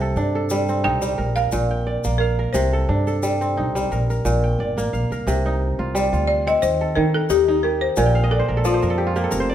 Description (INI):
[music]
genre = west african traditional, West African string and xylophone music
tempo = 88 BPM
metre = 4/4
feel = swing 54% on 16ths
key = C dorian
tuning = A4 = 442 Hz
[part]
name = kora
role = arpeggios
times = 0.0-9.5 s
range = Bb2 to G5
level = -22 LUFS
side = right 1 dB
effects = none
[part]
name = upright bass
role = bass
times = 0.0-9.5 s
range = F1 to Eb3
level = -22 LUFS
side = equal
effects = none
[part]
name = egg shaker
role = percussion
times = 0.2-9.5 s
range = none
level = -37 LUFS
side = left 5 dB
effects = none
[part]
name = balafon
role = melody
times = 0.8-9.5 s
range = F4 to G5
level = -21 LUFS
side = left 2 dB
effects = none
[sound]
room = light reverb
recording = none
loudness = -18 LUFS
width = side -10 dB against mid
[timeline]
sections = 0.0-5.3 A section; 5.3-9.5 B section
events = balafon solo 5.3-9.5; kora fill 8.1-9.5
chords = 0.0 Cm; 1.2 Bb; 2.6 Cm; 3.9 Bb; 5.3 Cm; 6.6 Eb; 8.0 Bb5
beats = 0.51 1.19 1.87 | 2.55 3.23 3.91 4.59 | 5.27 5.95 6.62 7.30 | 7.97 8.64 9.32